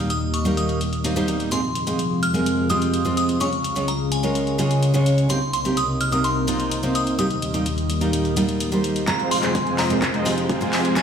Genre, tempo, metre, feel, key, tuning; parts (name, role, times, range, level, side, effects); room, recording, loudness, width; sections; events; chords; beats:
EDM, festival progressive house; 127 BPM; 4/4; straight; F minor; A4 = 440 Hz
glassy synth bell; melody; 0.0-11.0 s; Ab5 to F6; -27 LUFS; equal; chorus, phaser, tape echo
picked steel-string acoustic guitar; accompaniment; 0.0-11.0 s; C3 to Db5; -23 LUFS; right 2 dB; sidechain pumping, tape echo
lush unison pad; sustained chords; 0.0-11.0 s; C2 to F4; -24 LUFS; left 1 dB; chorus, sidechain pumping
house drum kit; drums; 0.1-11.0 s; handclaps, hi-hat; -29 LUFS; left 2 dB
supersaw chords; riff; 9.1-11.0 s; Ab3 to Ab5; -23 LUFS; equal; sidechain pumping, low-pass filter, tape echo
electronic kick drum; drums; 9.1-11.0 s; -26 LUFS; equal; high-pass filter on kick, high-pass filter on room
riser; sound effects; 10.1-11.0 s; -34 LUFS; left 1 dB
light reverb; played on a big sound system in a bare room, stone room reverb; -19 LUFS; side -7 dB against mid
0.0-9.1 A section; 9.1-11.0 B section
build-up 9.1-11.0; drum fill 9.1-11.0; filter sweep on supersaw synth 9.1-11.0
0.0 Eb; 1.5 Fm; 3.4 Db; 5.3 Cm7; 7.2 Eb; 9.1 Fm
0.10 0.57 1.05 | 1.52 1.99 2.46 2.94 | 3.41 3.88 4.35 4.83 | 5.30 5.77 6.24 6.71 | 7.19 7.66 8.13 8.61 | 9.08 9.55 10.02 10.49 | 10.97